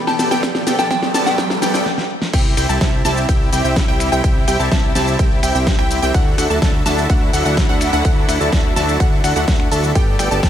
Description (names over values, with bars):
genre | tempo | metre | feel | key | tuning
EDM, festival progressive house | 126 BPM | 4/4 | straight | unclear | A4 = 440 Hz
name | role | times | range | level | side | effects
clear studio string section | sustained chords | 0.0-10.5 s | B2 to G4 | -27 LUFS | left 2 dB | sidechain pumping
wide unison pluck | arpeggios | 0.0-10.5 s | F#5 to A5 | -25 LUFS | right 1 dB | sidechain pumping, ping-pong delay
supersaw chords | riff | 0.0-10.5 s | B3 to A5 | -20 LUFS | equal | sidechain pumping, ping-pong delay
fat analog bass | bass | 0.0-10.5 s | G1 to D2 | -21 LUFS | equal | sidechain pumping, high-pass filter
riser and noise sweep | sound effects | 0.0-2.3 s | none | -24 LUFS | right 1 dB | none
soft synth bell | melody | 0.1-1.6 s | G5 to A5 | -22 LUFS | left 2 dB | chorus, phaser, ping-pong delay
big-room dance drum kit | drums | 0.1-10.5 s | crash cymbal, finger snaps, hi-hat, ride cymbal, shaker, snare drum | -22 LUFS | equal | none
electronic kick drum | drums | 0.4-10.5 s | none | -16 LUFS | equal | high-pass filter on kick
room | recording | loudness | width
light reverb | none | -14 LUFS | side -10 dB against mid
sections
0.0-2.3 A section; 2.3-10.5 B section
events
build-up 0.0-2.3; drum fill 0.0-1.9, 1.9-2.3; riser 0.0-1.9; noise sweep 0.4-2.3; stop 1.9-2.3; drop 2.3-10.5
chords
0.0 Gadd9; 2.3 C; 6.1 Dadd9; 10.0 Gadd9